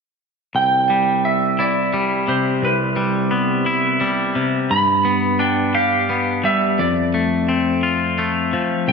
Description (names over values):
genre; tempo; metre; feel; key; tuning
rock; 58 BPM (dotted quarters); 6/8; straight; C major; A4 = 441 Hz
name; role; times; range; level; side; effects
twangy electric guitar; arpeggios; 0.5-8.9 s; C2 to G4; -18 LUFS; left 2 dB; slapback echo, tape echo
clean lap steel guitar; melody; 0.6-8.9 s; B4 to B5; -20 LUFS; right 2 dB; slapback echo, tape echo
room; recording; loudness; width
wet concert hall reverb, RT60 2.0 s; big arena sound; -16 LUFS; side -5 dB against mid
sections
0.5-8.9 A section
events
none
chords
0.5 Cmaj7; 4.7 G7; 6.8 F